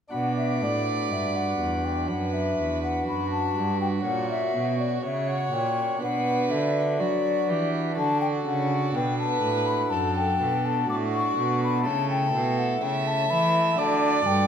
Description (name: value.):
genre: classical, baroque-style sonata movement with continuo.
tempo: 61 BPM.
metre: 4/4.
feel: straight.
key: B minor.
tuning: A4 = 440 Hz.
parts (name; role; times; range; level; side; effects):
mellow hollow silver concert flute; melody; 0.1-14.5 s; D5 to D6; -27 LUFS; left 5 dB; none.
warm violin; second line; 0.1-14.5 s; F#4 to E5; -30 LUFS; right 5 dB; none.
chamber organ, principal chorus; accompaniment; 0.1-14.5 s; E2 to C#5; -29 LUFS; equal; none.
rich cello; bass; 0.1-14.5 s; E2 to F#3; -28 LUFS; right 2 dB; none.
room: wet recital hall reverb, RT60 1.5 s.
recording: minimal, uncompressed stereo recording.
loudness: -23 LUFS.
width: side -8 dB against mid.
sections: 0.1-14.5 A section.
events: none.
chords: 0.1 Bm; 4.1 F#/A#; 6.0 Bm; 8.0 D; 11.9 A; 13.8 D.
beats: | 0.13 1.11 2.09 3.07 | 4.06 5.04 6.02 7.00 | 7.97 8.95 9.92 10.90 | 11.86 12.83 13.79.